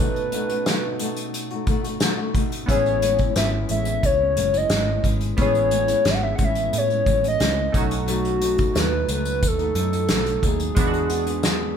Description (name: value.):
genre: indie pop, bedroom pop.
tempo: 89 BPM.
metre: 4/4.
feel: straight.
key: A lydian.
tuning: A4 = 439 Hz.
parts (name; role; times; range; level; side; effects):
hollow clarinet-like synth lead; melody; 0.0-11.8 s; F#4 to F#5; -23 LUFS; left 2 dB; chorus.
chorused retro synth keys; accompaniment; 0.0-11.8 s; B2 to A4; -30 LUFS; right 4 dB; none.
flamenco guitar; accompaniment; 0.0-11.8 s; A2 to G#4; -28 LUFS; left 4 dB; warbly pitch drift.
unplugged drum kit; drums; 0.2-11.6 s; hi-hat, kick drum, snare drum; -24 LUFS; equal; none.
vintage muted picked electric bass; bass; 2.7-11.8 s; F#1 to A2; -26 LUFS; right 2 dB; none.
room: moderate large studio reverb, RT60 1.3 s.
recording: band playing live in one room.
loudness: -19 LUFS.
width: side -8 dB against mid.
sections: 0.0-11.8 A section.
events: none.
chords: 0.0 B7; 2.7 Amaj7; 7.7 B7; 10.8 E7.